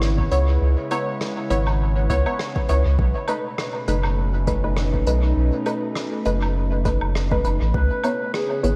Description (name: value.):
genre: ambient dub.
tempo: 101 BPM.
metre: 4/4.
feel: swing 56% on 16ths.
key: unclear.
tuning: A4 = 437 Hz.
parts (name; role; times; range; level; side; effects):
warbly tape-like pad; sustained chords; 0.0-8.8 s; B2 to B4; -32 LUFS; equal; chorus, built-in reverb, phaser.
filtered dub chord stab; stabs; 0.0-8.8 s; A3 to C#5; -28 LUFS; equal; chorus, dub echo.
soft dub sub bass; bass; 0.0-8.8 s; F#1 to C#2; -22 LUFS; equal; tube saturation.
vintage brush drum kit; drums; 0.0-8.8 s; hi-hat, rim click, woodblock; -34 LUFS; equal; dub echo.
electronic kick drum; drums; 0.2-7.9 s; none; -28 LUFS; equal; overdrive.
dark clarinet; melody; 7.7-8.8 s; G#4 to B4; -28 LUFS; equal; dub echo.
backwards swelling texture; texture; 7.7-8.8 s; none; barely audible; none; none.
room: moderate plate reverb, RT60 3.5 s.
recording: dreamy mix soaked in reverb.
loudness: -22 LUFS.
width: mono.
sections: 0.0-8.8 A section.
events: none.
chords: 0.0 C#m7; 3.0 B7; 7.7 C#m7.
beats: 0.02 | 0.61 1.21 1.80 2.40 | 2.99 3.58 4.18 4.77 | 5.37 5.96 6.55 7.15 | 7.74 8.34.